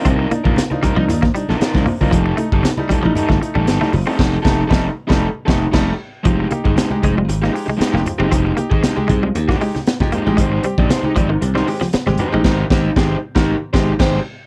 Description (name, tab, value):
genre	funk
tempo	116 BPM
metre	4/4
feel	straight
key	unclear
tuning	A4 = 440 Hz
part	raw garage guitar	accompaniment	0.0-14.2 s	Ab3 to D5	-24 LUFS	equal	overdrive
part	bright upright piano	stabs	0.0-14.2 s	Ab2 to G4	-26 LUFS	equal	none
part	clean electric guitar	riff	0.1-12.4 s	Eb3 to C4	-24 LUFS	equal	none
part	slap bass	bass	0.1-14.2 s	F1 to F2	-21 LUFS	equal	none
part	crunchy breakbeat drum kit	drums	0.1-14.2 s	crash cymbal, hi-hat, kick drum, snare drum	-21 LUFS	equal	none
part	congas	percussion	0.1-12.3 s	none	-29 LUFS	equal	none
room	little or no reverb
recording	dry, close 1970s-style studio recording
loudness	-17 LUFS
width	mono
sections	0.0-6.3 A section; 6.3-14.5 B section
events	band accent 4.2-6.3, 12.5-14.5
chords	0.0 Cm11; 2.1 F9; 6.3 Fm9; 10.4 Abmaj7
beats	| 0.05 0.57 1.09 1.60 | 2.12 2.64 3.15 3.67 | 4.19 4.71 5.22 5.74 | 6.25 6.77 7.29 7.80 | 8.32 8.84 9.35 9.87 | 10.39 10.90 11.42 11.94 | 12.45 12.97 13.48 14.00